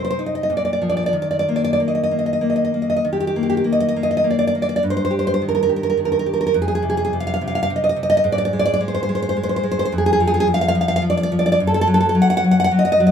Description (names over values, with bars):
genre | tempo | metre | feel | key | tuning
romantic piece for solo classical guitar | 91-110 BPM | 3/4 | rubato | Eb major | A4 = 439 Hz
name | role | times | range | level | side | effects
nylon-string guitar | solo | 0.0-13.1 s | F2 to F#5 | -16 LUFS | equal | none
room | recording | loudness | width
moderate stone room reverb, RT60 1.1 s | band playing live in one room | -16 LUFS | side -8 dB against mid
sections
0.0-3.1 A section; 3.1-13.1 B section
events
none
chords
0.0 Cm; 0.5 Bb5; 1.2 Eb5; 4.8 Eb/G; 6.6 F5; 8.2 N.C.